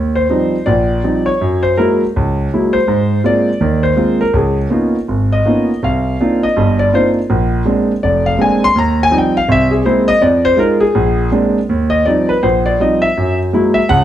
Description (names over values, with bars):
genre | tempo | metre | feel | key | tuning
solo jazz | 163 BPM | 4/4 | swing 63% on 8ths, rubato | Eb major | A4 = 436 Hz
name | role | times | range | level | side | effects
warm concert grand piano | solo | 0.0-14.0 s | F1 to C6 | -11 LUFS | equal | none
room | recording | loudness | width
moderate large studio reverb, RT60 1.0 s | none | -11 LUFS | side -11 dB against mid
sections
0.0-11.7 A section; 11.7-14.0 A section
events
grand piano solo 0.0-14.0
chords
0.0 Eb69; 1.4 Gb9; 2.9 Ab69; 4.3 Db13; 5.8 Cm11; 7.3 Bb9; 8.8 Eb69; 9.5 Caug7; 10.2 Fm7; 11.0 Bb9; 11.7 Eb69; 13.2 Gb9